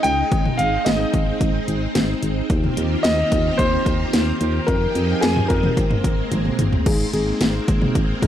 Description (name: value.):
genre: synth-pop.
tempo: 110 BPM.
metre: 4/4.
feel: straight.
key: unclear.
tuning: A4 = 443 Hz.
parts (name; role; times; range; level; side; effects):
warm grand piano; melody; 0.0-6.3 s; Ab4 to G5; -23 LUFS; left 1 dB; tape echo.
string machine, violins; sustained chords; 0.0-8.3 s; Eb3 to Ab4; -24 LUFS; right 1 dB; ensemble chorus.
solid FM bass; bass; 0.0-8.3 s; Ab1 to F2; -23 LUFS; equal; none.
house drum kit; drums; 0.0-8.3 s; crash cymbal, hi-hat, kick drum, snare drum, toms; -21 LUFS; equal; overdrive.
muted felt-like synth keys; accompaniment; 6.9-8.3 s; Bb3 to Ab4; -25 LUFS; left 3 dB; chorus.
room: digital ambience.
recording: dry, gritty hardware recording.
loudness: -17 LUFS.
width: side -11 dB against mid.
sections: 0.0-6.9 A section; 6.9-8.3 B section.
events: drum fill 6.3-6.9.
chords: 0.3 Ab; 2.5 Eb6; 4.7 Fm7; 5.8 Abadd9.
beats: | 0.32 0.86 1.41 1.95 | 2.50 3.04 3.59 4.13 | 4.68 5.23 5.77 6.32 | 6.86 7.41 7.95.